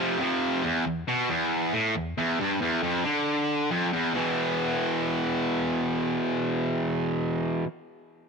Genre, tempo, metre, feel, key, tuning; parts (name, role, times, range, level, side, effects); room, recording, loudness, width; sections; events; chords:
metal; 137 BPM; 4/4; straight; A4 = 440 Hz
distorted electric guitar; solo; 0.0-7.7 s; E2 to F3; -24 LUFS; equal; overdrive
digital ambience; -24 LUFS; side -5 dB against mid
0.6-4.1 A section; 4.1-7.7 B section
0.0 F5; 0.6 N.C.; 4.1 E5